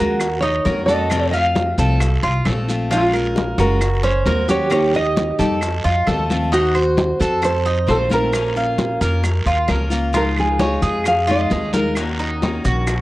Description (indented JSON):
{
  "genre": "latin, Cuban son and guajira",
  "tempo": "133 BPM",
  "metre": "4/4",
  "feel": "straight",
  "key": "Bb minor",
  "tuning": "A4 = 440 Hz",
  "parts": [
    { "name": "nylon-string guitar", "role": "melody", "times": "0.0-13.0 s", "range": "F4 to F5", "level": "-21 LUFS", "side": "right 1 dB", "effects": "analog delay" },
    { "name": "picked steel-string acoustic guitar", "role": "accompaniment", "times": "0.0-12.9 s", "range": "C3 to C5", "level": "-24 LUFS", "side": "left 2 dB", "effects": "none" },
    { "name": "Cuban tres", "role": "arpeggios", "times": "0.0-13.0 s", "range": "Db4 to F5", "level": "-22 LUFS", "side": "right 1 dB", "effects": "none" },
    { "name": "upright bass", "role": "bass", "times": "0.0-13.0 s", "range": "Gb1 to F2", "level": "-21 LUFS", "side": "equal", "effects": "none" },
    { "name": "bongos", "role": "percussion", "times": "0.2-13.0 s", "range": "none", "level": "-31 LUFS", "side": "left 4 dB", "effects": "none" },
    { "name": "claves", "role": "percussion", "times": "0.2-13.0 s", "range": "none", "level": "-29 LUFS", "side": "right 4 dB", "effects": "none" },
    { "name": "congas", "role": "percussion", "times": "0.2-13.0 s", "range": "none", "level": "-25 LUFS", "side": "left 1 dB", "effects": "none" },
    { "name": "guiro", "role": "percussion", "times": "0.2-13.0 s", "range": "none", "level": "-33 LUFS", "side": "right 3 dB", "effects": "none" },
    { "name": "maracas", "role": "percussion", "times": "0.2-13.0 s", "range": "none", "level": "-36 LUFS", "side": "right 2 dB", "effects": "none" }
  ],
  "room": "light reverb",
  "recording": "worn, warbling old tape, cassette tape, warbly pitch drift",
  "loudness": "-16 LUFS",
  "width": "side -17 dB against mid",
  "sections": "0.0-10.1 A section; 10.1-13.0 B section",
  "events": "none",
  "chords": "0.2 Ebm7; 1.1 F; 2.9 Bbm7; 3.8 Gb; 4.7 Eb; 5.6 F; 6.5 Cdim/Eb; 7.4 F7; 8.3 Bbm; 10.1 Dbadd9; 12.0 Ebm7"
}